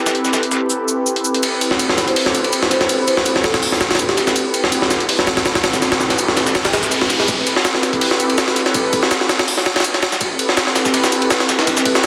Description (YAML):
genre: drum and bass, jungle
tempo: 164 BPM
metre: 4/4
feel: swing 54% on 16ths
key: A minor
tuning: A4 = 441 Hz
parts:
  - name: airy breathy pad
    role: sustained chords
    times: 0.0-12.0 s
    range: C4 to B4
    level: -22 LUFS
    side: equal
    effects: chorus
  - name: dusty soul sampler-style drum kit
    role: drums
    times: 0.1-12.1 s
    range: hi-hat, shaker, snare drum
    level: -25 LUFS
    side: equal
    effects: high-pass filter on perc, high-pass filter on snare, high-pass filter on hats
  - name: jungle sampler-style drum kit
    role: drums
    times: 1.4-12.1 s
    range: hi-hat, kick drum, ride cymbal, snare drum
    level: -18 LUFS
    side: equal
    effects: high-pass filter on cymbals, high-pass filter on snare, high-pass filter on hats, high-pass filter on kick, high-pass filter on room
  - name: marimba with soft mallets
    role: melody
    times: 2.1-4.4 s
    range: G4 to C5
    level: -25 LUFS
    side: equal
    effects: vintage 12-bit sampler grit, dub echo
  - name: riser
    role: sound effects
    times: 5.1-7.3 s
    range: none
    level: -27 LUFS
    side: equal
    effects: none
room: moderate plate reverb, RT60 1.4 s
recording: dense, heavily limited modern master, vinyl crackle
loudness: -17 LUFS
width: mono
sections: 0.0-7.3 A section; 7.3-12.1 B section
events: riser 5.1-7.3; build-up 7.3-12.1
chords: 0.0 Am9